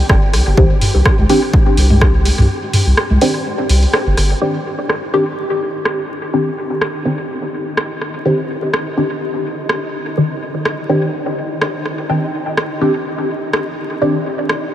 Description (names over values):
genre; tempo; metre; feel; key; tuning
dub techno; 125 BPM; 4/4; swing 55% on 16ths; C minor; A4 = 441 Hz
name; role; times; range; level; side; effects
flickering grainy texture; texture; 0.0-14.7 s; Eb4 to G4; -27 LUFS; equal; built-in reverb, ensemble chorus, sidechain pumping
soft dub sub bass; bass; 0.1-4.3 s; G1 to C2; -13 LUFS; equal; sidechain pumping
electronic kick drum; drums; 0.1-2.1 s; none; -13 LUFS; equal; none
punchy analog drum machine; drums; 0.1-14.6 s; hi-hat, rim click; -21 LUFS; equal; low-pass filter on hats, low-pass filter on snare, dub echo
filtered dub chord stab; stabs; 0.6-14.2 s; Eb3 to G4; -18 LUFS; equal; phaser, cassette tape, dub echo
electronic toms and congas; percussion; 0.8-3.2 s; none; -19 LUFS; equal; overdrive, sidechain pumping on toms, sidechain pumping on perc, dub echo
room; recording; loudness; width
moderate huge ambient reverb, RT60 8.4 s; dreamy mix soaked in reverb, vinyl crackle; -14 LUFS; side -12 dB against mid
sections
0.0-4.4 A section; 4.4-14.7 B section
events
break 2.5-4.4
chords
0.0 C5; 4.4 Cmadd9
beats
0.10 | 0.57 1.05 1.53 2.02 | 2.50 2.98 3.46 3.94 | 4.42 4.89 5.38 5.86 | 6.33 6.82 7.29 7.78 | 8.26 8.73 9.21 9.70 | 10.18 10.65 11.13 11.62 | 12.10 12.57 13.05 13.54 | 14.02 14.49